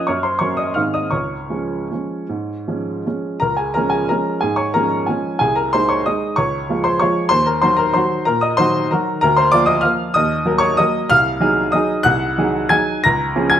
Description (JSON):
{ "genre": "classical, piano waltz", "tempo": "150-198 BPM", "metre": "3/4", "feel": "rubato", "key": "Db major", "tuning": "A4 = 441 Hz", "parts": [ { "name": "clear upright piano", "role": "solo", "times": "0.0-13.6 s", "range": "C2 to Bb6", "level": "-15 LUFS", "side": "equal", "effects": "none" } ], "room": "moderate recital hall reverb, RT60 1.5 s", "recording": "close, detailed microphones", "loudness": "-15 LUFS", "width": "side -10 dB against mid", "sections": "0.0-3.4 A section; 3.4-13.6 B section", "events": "none", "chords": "0.1 Gb; 0.8 Ab; 1.1 Db; 5.4 Ab/C; 6.4 Db; 7.3 Ebm; 9.2 Bb/D; 10.1 Ebm; 11.1 Ab7/C; 13.0 Db", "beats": "| 0.09 0.41 0.77 | 1.13 1.51 1.91 | 2.29 2.67 3.05 | 3.41 3.75 4.08 | 4.41 4.73 5.07 | 5.40 5.73 6.05 | 6.38 6.69 7.01 | 7.32 7.63 7.96 | 8.27 8.58 8.90 | 9.21 9.52 9.83 | 10.14 10.46 10.78 | 11.10 11.41 11.73 | 12.05 12.36 12.70 | 13.03 13.35" }